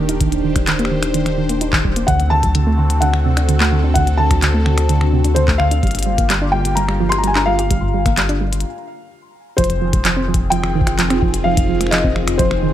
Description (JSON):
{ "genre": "IDM", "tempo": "128 BPM", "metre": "4/4", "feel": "straight", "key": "unclear", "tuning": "A4 = 440 Hz", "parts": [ { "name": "phased analog pad", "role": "sustained chords", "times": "0.0-12.7 s", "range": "D3 to C5", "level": "-23 LUFS", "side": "equal", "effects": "phaser, chorus, sidechain pumping" }, { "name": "soft round pluck", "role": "arpeggios", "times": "0.0-12.7 s", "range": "D2 to G4", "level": "-21 LUFS", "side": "right 4 dB", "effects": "chorus, digital delay" }, { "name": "warm sub bass", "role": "bass", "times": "0.0-12.7 s", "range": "Eb1 to D2", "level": "-19 LUFS", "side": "equal", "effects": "none" }, { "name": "glitchy drum kit", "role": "drums", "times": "0.1-12.6 s", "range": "finger snaps, handclaps, hi-hat", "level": "-21 LUFS", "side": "left 1 dB", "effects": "overdrive, studio reverb" }, { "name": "electronic kick drum", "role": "drums", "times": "0.2-12.5 s", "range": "none", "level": "-20 LUFS", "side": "equal", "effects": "studio reverb" }, { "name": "felt-muted upright piano", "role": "melody", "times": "2.1-12.7 s", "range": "C5 to C6", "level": "-21 LUFS", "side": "left 2 dB", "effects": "vintage 12-bit sampler grit, ping-pong delay" } ], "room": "light reverb", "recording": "none", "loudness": "-14 LUFS", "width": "side -12 dB against mid", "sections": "0.0-9.6 A section; 9.6-12.7 B section", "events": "break 8.6-9.6", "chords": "0.0 Ebmaj7; 2.1 D7; 5.8 Gm7; 9.6 Fm7" }